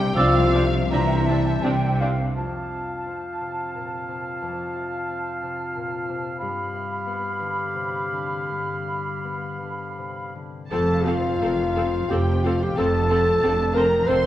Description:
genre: cinematic, emotional film score for orchestra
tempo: 79-93 BPM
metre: 3/4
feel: rubato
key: F major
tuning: A4 = 440 Hz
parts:
  - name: rich symphonic violin section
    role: melody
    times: 0.0-2.0, 10.7-14.1 s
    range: E5 to G5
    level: -35 LUFS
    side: left 3 dB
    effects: none
  - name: dark clarinet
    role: second line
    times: 0.0-14.3 s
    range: E4 to C5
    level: -26 LUFS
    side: left 1 dB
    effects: none
  - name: dark symphonic violin section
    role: second line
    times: 0.0-2.0, 10.7-14.3 s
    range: E5 to C6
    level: -30 LUFS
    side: left 2 dB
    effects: none
  - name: mellow French horn section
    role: sustained chords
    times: 0.0-2.0 s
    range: E3 to G3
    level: -25 LUFS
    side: left 3 dB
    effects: none
  - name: concert harp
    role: arpeggios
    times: 0.0-14.3 s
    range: F2 to E6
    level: -32 LUFS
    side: left 5 dB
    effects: none
  - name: rich symphonic cello section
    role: bass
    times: 0.0-2.3, 10.7-14.3 s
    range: F2 to C3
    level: -26 LUFS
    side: right 2 dB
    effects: none
  - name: rich symphonic double bass section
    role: bass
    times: 0.0-2.3, 10.7-14.3 s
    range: F1 to C2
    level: -26 LUFS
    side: right 2 dB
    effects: none
  - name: flute section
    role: second line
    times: 0.2-10.3 s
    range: F5 to E6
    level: -30 LUFS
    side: right 1 dB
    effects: none
  - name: warm oboe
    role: second line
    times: 0.2-10.3 s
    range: D5 to F5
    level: -31 LUFS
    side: right 1 dB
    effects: none
  - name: clear symphonic viola section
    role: accompaniment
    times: 0.2-2.1, 10.7-14.2 s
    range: C4 to C5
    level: -30 LUFS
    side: right 1 dB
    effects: none
room: wet scoring stage reverb, RT60 1.6 s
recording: worn, warbling old tape, cassette tape, warbly pitch drift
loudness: -21 LUFS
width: side -13 dB against mid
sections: 0.0-2.4 A section; 2.4-10.7 B section; 10.7-14.3 C section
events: none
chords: 0.0 Cadd9; 2.4 F; 6.4 G7; 10.7 F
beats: | 0.18 0.92 1.64 | 2.37 3.08 3.76 | 4.43 5.11 5.76 | 6.41 7.07 7.76 | 8.50 9.25 9.99 | 10.71 11.41 12.10 | 12.77 13.43 14.08

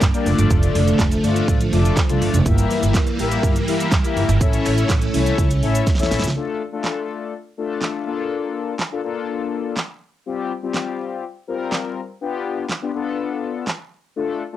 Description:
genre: dance-pop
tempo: 123 BPM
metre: 4/4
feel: straight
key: D minor from 6.4 s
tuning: A4 = 440 Hz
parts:
  - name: mellow synth brass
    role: accompaniment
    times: 0.0-14.6 s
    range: G3 to E5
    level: -23 LUFS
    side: left 6 dB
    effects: chorus, sidechain pumping, cassette tape
  - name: string machine, violins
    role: sustained chords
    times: 0.0-6.3 s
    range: D3 to C#4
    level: -23 LUFS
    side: right 2 dB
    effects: ensemble chorus, sidechain pumping, cassette tape
  - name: upright bass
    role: bass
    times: 0.0-6.3 s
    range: F1 to G2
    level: -20 LUFS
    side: right 1 dB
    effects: sidechain pumping
  - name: pop drum kit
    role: drums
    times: 0.0-13.8 s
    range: handclaps, hi-hat, kick drum, shaker, snare drum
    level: -20 LUFS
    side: right 1 dB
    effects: cassette tape
room: light reverb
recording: home recording on cassette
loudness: -18 LUFS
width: side -12 dB against mid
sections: 0.0-6.4 A section; 6.4-14.6 B section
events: drop 0.0-6.4; drum fill 5.9-6.4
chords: 0.3 Dm/F; 2.5 Edim/G; 4.4 A; 6.4 Dm; 8.1 Bbmaj7; 10.3 Csus4; 12.2 G7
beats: 0.02 | 0.51 0.99 1.48 1.97 | 2.46 2.94 3.43 3.92 | 4.41 4.90 5.38 5.87 | 6.36 6.85 7.33 7.82 | 8.31 8.80 9.29 9.77 | 10.26 10.75 11.24 11.72 | 12.21 12.70 13.19 13.68 | 14.16

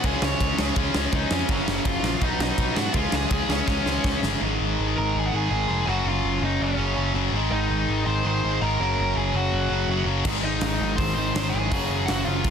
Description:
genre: punk rock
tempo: 164 BPM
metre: 4/4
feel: straight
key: unclear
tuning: A4 = 441 Hz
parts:
  - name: smooth overdriven lead guitar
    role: melody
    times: 0.0-12.5 s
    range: Db4 to Db6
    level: -28 LUFS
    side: equal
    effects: none
  - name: distorted electric guitar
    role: riff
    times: 0.0-12.5 s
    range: Gb2 to Db4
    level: -29 LUFS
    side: right 15 dB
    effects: overdrive
  - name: thick fuzz guitar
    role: riff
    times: 0.0-4.4, 10.3-12.5 s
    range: Gb2 to Db4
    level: -33 LUFS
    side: equal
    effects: none
  - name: tight distorted guitar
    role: riff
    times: 0.0-12.5 s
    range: Gb2 to Db4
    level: -28 LUFS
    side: left 15 dB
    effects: distortion
  - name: modern bright picked electric bass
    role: bass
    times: 0.0-12.5 s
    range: F1 to Ab2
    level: -27 LUFS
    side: equal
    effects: none
  - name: big rock drum kit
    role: drums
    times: 0.0-4.3, 10.2-12.5 s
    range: crash cymbal, hi-hat, kick drum, ride cymbal, snare drum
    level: -26 LUFS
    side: equal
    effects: none
room: little or no reverb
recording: dense, heavily limited modern master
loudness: -21 LUFS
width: side -7 dB against mid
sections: 0.0-4.4 A section; 4.4-12.5 B section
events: drum fill 3.7-4.4; half time 4.4-12.5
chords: 0.0 Db5; 1.5 Gb; 2.2 Cb; 2.9 Db; 4.4 Ab5; 5.9 Gb5; 7.3 Ab; 8.8 Gb; 10.3 Ab; 11.7 Gb5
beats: | 0.03 0.40 0.76 1.12 | 1.49 1.85 2.22 2.58 | 2.94 3.31 3.67 4.04 | 4.41 4.77 5.13 5.50 | 5.87 6.23 6.60 6.96 | 7.33 7.70 8.06 8.43 | 8.79 9.16 9.52 9.89 | 10.25 10.62 10.98 11.35 | 11.71 12.08 12.45

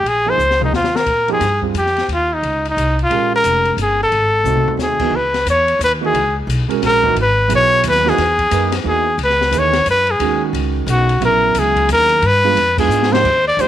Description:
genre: modal jazz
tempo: 178 BPM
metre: 3/4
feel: swing 63% on 8ths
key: C# dorian from 5.1 s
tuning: A4 = 440 Hz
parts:
  - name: clear trumpet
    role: melody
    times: 0.0-13.7 s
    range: Eb4 to D5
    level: -14 LUFS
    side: left 1 dB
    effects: none
  - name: upright bass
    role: bass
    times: 0.0-13.7 s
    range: F1 to Bb2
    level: -21 LUFS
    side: left 1 dB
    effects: none
  - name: open jazz drum kit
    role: drums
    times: 0.1-13.7 s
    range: crash cymbal, hi-hat, kick drum, ride cymbal, snare drum, toms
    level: -26 LUFS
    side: left 6 dB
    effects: none
  - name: warm grand piano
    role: accompaniment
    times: 0.3-13.7 s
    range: Cb3 to B4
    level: -22 LUFS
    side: right 13 dB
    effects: none
room: light reverb, studio reverb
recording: 1960s-style stereo with parts hard left and right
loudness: -13 LUFS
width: side -11 dB against mid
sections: 0.0-5.1 A section; 5.1-13.2 B section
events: drum fill 0.4-1.1, 4.5-4.8, 12.9-13.2; band accent 12.7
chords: 0.0 Bbm11; 1.1 Ebadd9; 4.1 Ab7b9; 5.1 C#m9; 9.2 D#m/C#; 12.2 G7b9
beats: | 0.04 0.39 0.72 | 1.06 1.40 1.74 | 2.08 2.42 2.76 | 3.10 3.44 3.78 | 4.12 4.46 4.80 | 5.14 5.47 5.81 | 6.15 6.49 6.83 | 7.17 7.50 7.84 | 8.18 8.52 8.86 | 9.19 9.53 9.87 | 10.21 10.54 10.88 | 11.22 11.56 11.89 | 12.23 12.57 12.91 | 13.25 13.58

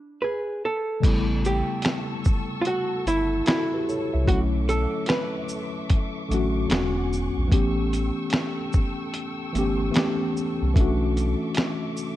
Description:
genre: lo-fi hip hop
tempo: 74 BPM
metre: 4/4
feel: swing 64% on 16ths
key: unclear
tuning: A4 = 439 Hz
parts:
  - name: archtop guitar, miked and amplified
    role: melody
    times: 0.0-6.7 s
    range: D4 to B4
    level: -27 LUFS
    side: right 2 dB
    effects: low-pass filter, analog delay
  - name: mellow tine electric piano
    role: accompaniment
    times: 1.0-12.2 s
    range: E2 to E5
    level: -27 LUFS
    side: left 1 dB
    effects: medium stereo tremolo, cassette tape, low-pass filter
  - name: warm symphonic string section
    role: sustained chords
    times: 1.0-12.2 s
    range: G#4 to E6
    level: -36 LUFS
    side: left 2 dB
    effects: low-pass filter
  - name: soft dub sub bass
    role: bass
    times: 1.0-11.4 s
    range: E1 to C2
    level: -26 LUFS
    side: equal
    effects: none
  - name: dusty soul sampler-style drum kit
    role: drums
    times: 1.0-12.2 s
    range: crash cymbal, finger snaps, hi-hat, kick drum, shaker, snare drum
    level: -24 LUFS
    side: equal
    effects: none
room: little or no reverb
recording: none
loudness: -22 LUFS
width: side -14 dB against mid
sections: 0.0-1.0 A section; 1.0-12.2 B section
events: stop 0.0-1.0; filter sweep 0.0-1.0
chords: 0.0 N.C.; 1.0 A7; 4.3 Bm11; 6.7 E13; 7.5 A7; 10.8 Bm11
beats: 0.22 | 1.03 1.84 2.65 3.46 | 4.27 5.08 5.89 6.71 | 7.52 8.33 9.14 9.95 | 10.76 11.57

